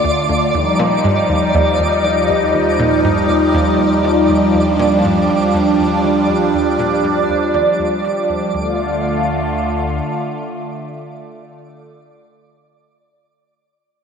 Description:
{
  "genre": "ambient, sequencer-driven space music",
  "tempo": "120 BPM",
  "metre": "4/4",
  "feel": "straight",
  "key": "D phrygian",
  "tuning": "A4 = 442 Hz",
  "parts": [
    { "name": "phased analog pad", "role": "sustained chords", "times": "0.0-11.6 s", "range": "D3 to F4", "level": "-15 LUFS", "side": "equal", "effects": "phaser, chorus" },
    { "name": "analog pluck", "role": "riff", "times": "0.0-8.8 s", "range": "D2 to Eb3", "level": "-22 LUFS", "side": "equal", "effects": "chorus, ping-pong delay" },
    { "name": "round analog bass", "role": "bass", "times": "0.0-10.0 s", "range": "D2 to Eb2", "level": "-28 LUFS", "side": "equal", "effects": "none" },
    { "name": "twinkling granular texture", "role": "texture", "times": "0.0-8.6 s", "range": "D5", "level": "-20 LUFS", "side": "right 1 dB", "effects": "built-in reverb" }
  ],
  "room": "wet concert hall reverb, RT60 2.3 s",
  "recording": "dark, warm production",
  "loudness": "-13 LUFS",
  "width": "side -6 dB against mid",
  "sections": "0.0-8.5 A section; 8.5-12.5 B section",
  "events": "fade-out on synth arpeggio sound 0.0-8.5; fade-out on analog synth bass 0.0-8.5",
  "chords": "0.0 Dm; 0.5 Ebadd9; 8.5 Dm",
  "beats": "0.04 | 0.54 1.04 1.54 2.04 | 2.54 3.04 3.54 4.04 | 4.54 5.04 5.54 6.04 | 6.54 7.04 7.54 8.04 | 8.54 9.04 9.54 10.04 | 10.54 11.04 11.54"
}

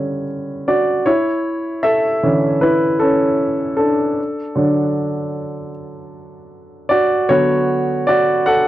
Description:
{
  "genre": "pop",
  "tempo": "77 BPM",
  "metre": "4/4",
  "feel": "straight",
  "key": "D major",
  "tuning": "A4 = 441 Hz",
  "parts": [
    { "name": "warm grand piano", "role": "solo", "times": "0.0-8.7 s", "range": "C#3 to F#5", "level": "-15 LUFS", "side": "equal", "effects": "none" }
  ],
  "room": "light reverb",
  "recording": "dry, close 1970s-style studio recording",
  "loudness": "-15 LUFS",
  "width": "side -14 dB against mid",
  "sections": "0.0-1.1 A section; 1.1-8.7 B section",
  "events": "grand piano solo 0.0-1.1, 1.1-8.7",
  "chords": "0.0 Em13/C#; 1.1 A; 4.2 D; 7.3 Dmaj13",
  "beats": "0.28 | 1.06 1.84 2.62 3.40 | 4.18 4.96 5.74 6.52 | 7.29 8.07"
}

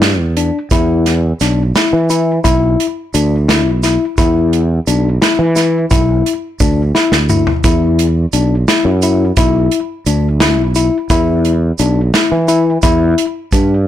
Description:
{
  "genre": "progressive instrumental, band music in an uneven meter",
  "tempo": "173 BPM (eighths)",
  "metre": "5/8",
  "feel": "straight",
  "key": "E minor",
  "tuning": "A4 = 440 Hz",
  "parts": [
    { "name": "tine electric piano", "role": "arpeggios", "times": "0.0-13.7 s", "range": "D4 to E4", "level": "-15 LUFS", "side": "left 5 dB", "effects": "none" },
    { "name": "sustaining fretless electric bass", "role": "bass", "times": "0.0-13.9 s", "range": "B1 to E3", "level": "-13 LUFS", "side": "right 1 dB", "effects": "none" },
    { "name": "natural country drum kit", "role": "drums", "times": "0.0-13.7 s", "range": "hi-hat, kick drum, snare drum, toms", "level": "-16 LUFS", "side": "right 2 dB", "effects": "none" },
    { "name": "tube shaker", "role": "percussion", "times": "0.7-13.8 s", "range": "none", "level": "-26 LUFS", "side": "right 9 dB", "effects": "none" }
  ],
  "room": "light reverb",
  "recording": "blown-out, overdriven recording, overdrive",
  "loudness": "-11 LUFS",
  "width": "side -11 dB against mid",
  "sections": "0.7-13.9 A section",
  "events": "drum fill 7.0-7.6",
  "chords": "0.0 Em7; 0.7 E5; 12.8 Em7",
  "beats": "0.02 0.37 | 0.71 1.06 1.41 1.75 2.10 | 2.45 2.79 3.14 3.49 3.83 | 4.18 4.53 4.87 5.22 5.57 | 5.91 6.26 6.60 6.95 7.30 | 7.64 7.99 8.34 8.68 9.03 | 9.37 9.72 10.07 10.41 10.76 | 11.11 11.45 11.80 12.14 12.49 | 12.84 13.18 13.53 13.87"
}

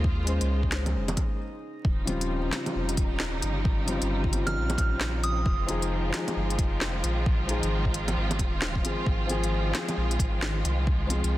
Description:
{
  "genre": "future garage",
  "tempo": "133 BPM",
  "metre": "4/4",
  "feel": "swing 62% on 16ths",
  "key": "unclear",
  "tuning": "A4 = 438 Hz",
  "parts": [
    { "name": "felt-muted upright piano", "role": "accompaniment", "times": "0.0-11.4 s", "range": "Db3 to C5", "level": "-32 LUFS", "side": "left 2 dB", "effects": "sidechain pumping, tape echo" },
    { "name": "warm studio string section", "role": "sustained chords", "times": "0.0-11.4 s", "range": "Db3 to C5", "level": "-34 LUFS", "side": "right 2 dB", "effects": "vintage 12-bit sampler grit, sidechain pumping" },
    { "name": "warm sub bass", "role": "bass", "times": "0.0-11.4 s", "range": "Eb1 to Eb2", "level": "-29 LUFS", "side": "equal", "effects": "none" },
    { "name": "electronic kick drum", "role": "drums", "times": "0.0-11.0 s", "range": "none", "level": "-28 LUFS", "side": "equal", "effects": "none" },
    { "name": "drifting glass-harmonics texture", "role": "texture", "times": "0.0-1.4 s", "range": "Eb4 to Eb5", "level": "-47 LUFS", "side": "equal", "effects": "chorus, built-in reverb" },
    { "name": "organic electronic drum kit", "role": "drums", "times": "0.3-11.3 s", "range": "bongos, hi-hat, snare drum", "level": "-32 LUFS", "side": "equal", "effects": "none" },
    { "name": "soft synth bell", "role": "melody", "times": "4.5-5.5 s", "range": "Eb6 to F6", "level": "-33 LUFS", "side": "right 3 dB", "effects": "chorus, tape echo" }
  ],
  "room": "light reverb, digital ambience",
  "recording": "dense, heavily limited modern master, vinyl crackle",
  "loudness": "-25 LUFS",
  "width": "side -15 dB against mid",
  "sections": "0.0-1.8 A section; 1.8-11.4 B section",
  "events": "stop 1.4-1.8",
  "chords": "0.0 Bbm9; 1.8 Eb13; 5.5 Fm7; 9.1 Ab6",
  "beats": "| 0.04 0.49 0.94 1.40 | 1.85 2.30 2.75 3.20 | 3.65 4.10 4.55 5.01 | 5.46 5.91 6.36 6.81 | 7.26 7.71 8.16 8.62 | 9.07 9.52 9.97 10.42 | 10.87 11.32"
}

